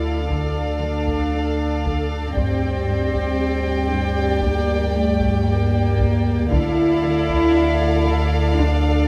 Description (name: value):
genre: cinematic, suspense film score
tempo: 58 BPM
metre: 4/4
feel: straight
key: D minor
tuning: A4 = 445 Hz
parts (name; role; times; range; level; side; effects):
- dark chamber violin section; melody; 0.0-9.1 s; F5 to G5; -32 LUFS; equal; none
- warm symphonic violin section; second line; 0.0-9.1 s; D5; -31 LUFS; equal; none
- dark symphonic viola section; accompaniment; 0.0-9.1 s; G4 to A4; -31 LUFS; equal; none
- warm symphonic cello section; riff; 0.0-8.9 s; G2 to D4; -33 LUFS; equal; none
- dark symphonic double bass section; bass; 0.0-9.1 s; D2 to G2; -26 LUFS; equal; none
- warm symphonic cello section; bass; 0.0-9.1 s; A3 to E4; -25 LUFS; equal; none
- saturated sub bass; drone; 0.0-9.1 s; D2; -27 LUFS; equal; none
- taiko ensemble; drums; 0.3-9.1 s; none; -31 LUFS; equal; none
room: moderate concert hall reverb, RT60 2.1 s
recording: none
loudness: -20 LUFS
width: mono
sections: 0.0-9.1 A section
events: none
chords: 0.0 Dm; 2.4 Gm/D; 6.5 Dm